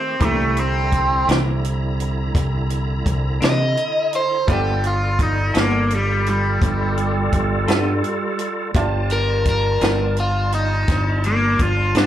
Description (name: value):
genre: slow blues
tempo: 56 BPM (dotted quarters)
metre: 12/8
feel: straight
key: unclear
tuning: A4 = 444 Hz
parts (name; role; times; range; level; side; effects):
- overdriven semi-hollow guitar; melody; 0.0-12.1 s; G3 to Eb5; -20 LUFS; equal; phaser, slapback echo
- clear upright piano; accompaniment; 0.0-12.1 s; E4 to D6; -30 LUFS; right 5 dB; slapback echo
- bright tonewheel organ; sustained chords; 0.0-12.1 s; D3 to Bb5; -27 LUFS; right 1 dB; slow rotary speaker, overdrive, chorus vibrato
- clean electric guitar; accompaniment; 0.2-12.1 s; C3 to A4; -26 LUFS; left 4 dB; tremolo, slapback echo
- fingered electric bass; bass; 0.2-12.1 s; G1 to C3; -21 LUFS; equal; none
- compact cocktail drum kit; drums; 0.2-12.1 s; hi-hat, kick drum, snare drum; -21 LUFS; equal; none
room: light reverb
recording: live gig heard through the venue's PA, club reverb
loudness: -17 LUFS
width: side -11 dB against mid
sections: 0.0-12.1 A section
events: overdriven electric guitar solo 0.0-12.1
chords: 0.2 C9; 4.5 G9